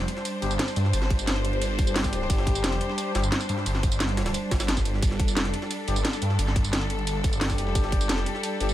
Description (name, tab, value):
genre	dark technical drum and bass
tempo	176 BPM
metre	4/4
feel	straight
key	unclear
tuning	A4 = 441 Hz
part	rich studio string section	sustained chords	0.0-8.7 s	G3 to C5	-31 LUFS	equal	sidechain pumping
part	phased detuned saw bass	bass	0.0-8.7 s	F1 to G2	-27 LUFS	equal	phaser, sidechain pumping
part	drum and bass drum kit	drums	0.0-8.7 s	hi-hat, snare drum, tambourine	-29 LUFS	equal	none
part	jungle sampler-style drum kit	drums	0.0-8.7 s	hi-hat, ride cymbal, snare drum	-37 LUFS	right 1 dB	none
part	mellow brass ensemble	stabs	0.4-3.3, 5.9-8.7 s	G3 to G4	-34 LUFS	left 3 dB	vintage 12-bit sampler grit, dub echo
part	electronic kick drum	drums	1.1-8.0 s	none	-25 LUFS	equal	none
room	digital ambience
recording	none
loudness	-23 LUFS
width	side -13 dB against mid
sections	0.0-8.7 A section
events	none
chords	0.0 Gsus2